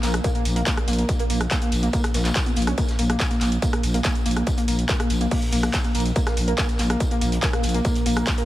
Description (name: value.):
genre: driving peak-time techno.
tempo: 142 BPM.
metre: 4/4.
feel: straight.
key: unclear.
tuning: A4 = 443 Hz.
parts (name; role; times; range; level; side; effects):
overdriven synth lead; riff; 0.0-8.4 s; Bb3 to Db4; -27 LUFS; equal; distortion, wide subtle chorus, sidechain pumping, dub echo.
growling FM bass; bass; 0.0-8.2 s; Bb1; -24 LUFS; equal; sidechain pumping.
analog drone; drone; 0.0-8.4 s; Bb2 to Bb3; -31 LUFS; equal; chorus, sidechain pumping.
techno drum kit; drums; 0.0-8.4 s; handclaps, hi-hat, rim click; -28 LUFS; equal; sidechain pumping on hats.
vintage drum kit; drums; 0.0-8.4 s; hi-hat, snare drum, tambourine; -36 LUFS; equal; sidechain pumping on hats, high-pass filter on hats, high-pass filter on snare, sidechain pumping on perc, high-pass filter on perc, high-pass filter on room.
electronic kick drum; drums; 0.2-8.4 s; none; -24 LUFS; equal; distortion.
room: light reverb, small room ambience.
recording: heavily compressed radio sound.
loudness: -20 LUFS.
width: side -15 dB against mid.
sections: 0.0-8.4 A section.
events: none.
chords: none.